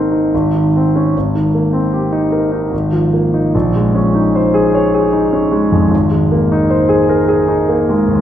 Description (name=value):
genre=classical, impressionist solo piano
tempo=76 BPM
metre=3/4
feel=rubato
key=Ab major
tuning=A4 = 440 Hz
part: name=warm concert grand piano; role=solo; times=0.0-8.2 s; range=Ab1 to Db5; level=-11 LUFS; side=equal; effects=none
room=wet scoring stage reverb, RT60 1.6 s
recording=heard from further back in the room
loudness=-11 LUFS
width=side -10 dB against mid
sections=0.0-8.2 A section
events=none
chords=0.3 Dbsus2/Ab; 1.1 Cm7/Ab; 2.7 Fm7/Ab; 3.5 Bbm11; 5.9 Abadd9